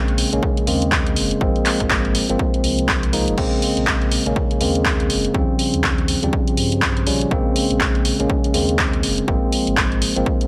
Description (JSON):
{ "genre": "deep house", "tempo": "122 BPM", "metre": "4/4", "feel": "swing 60% on 16ths", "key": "Bb dorian", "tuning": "A4 = 441 Hz", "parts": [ { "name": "tine electric piano", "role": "stabs", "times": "0.0-10.5 s", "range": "Db3 to Eb4", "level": "-23 LUFS", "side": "equal", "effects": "vintage 12-bit sampler grit, sidechain pumping, low-pass filter, dub echo" }, { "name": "sub bass with octave", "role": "bass", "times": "0.0-10.2 s", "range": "F1 to G2", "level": "-28 LUFS", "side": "equal", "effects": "tube saturation, sidechain pumping" }, { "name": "punchy analog drum machine", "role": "drums", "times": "0.1-10.5 s", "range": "crash cymbal, handclaps, hi-hat", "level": "-24 LUFS", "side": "equal", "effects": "none" }, { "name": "electronic kick drum", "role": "drums", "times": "0.4-10.4 s", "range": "none", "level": "-24 LUFS", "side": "equal", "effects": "none" } ], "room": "light reverb, digital ambience", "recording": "none", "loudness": "-19 LUFS", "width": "mono", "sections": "0.0-10.5 A section", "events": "none", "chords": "0.0 Bbm9; 1.4 Ab69; 3.4 Bbm9; 5.3 Eb13; 7.3 Bbm9; 9.3 Ab69", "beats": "0.43 0.92 | 1.41 1.90 2.39 2.88 | 3.38 3.87 4.36 4.85 | 5.34 5.84 6.33 6.82 | 7.31 7.80 8.29 8.79 | 9.28 9.77 10.26" }